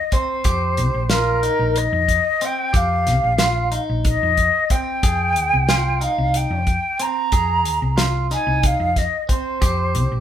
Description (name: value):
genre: progressive instrumental, band music in an uneven meter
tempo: 183 BPM (eighths)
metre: 7/8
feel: straight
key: F minor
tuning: A4 = 440 Hz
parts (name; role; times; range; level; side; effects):
- mellow concert flute; melody; 0.0-10.2 s; Bb4 to Bb5; -20 LUFS; equal; none
- clean electric guitar; arpeggios; 0.1-10.2 s; C4 to Ab4; -26 LUFS; right 2 dB; none
- damped 70s drum kit; drums; 0.1-10.1 s; hi-hat, kick drum, snare drum; -21 LUFS; equal; none
- hollow-body short-scale fingered electric bass; bass; 0.4-10.2 s; Bb1 to F2; -22 LUFS; left 1 dB; none
room: moderate studio reverb, RT60 0.7 s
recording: band playing live in one room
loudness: -17 LUFS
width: side -10 dB against mid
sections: 0.0-10.2 A section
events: none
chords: 0.5 Ebadd9; 5.0 Fm11; 9.6 Ebadd9 (rootless)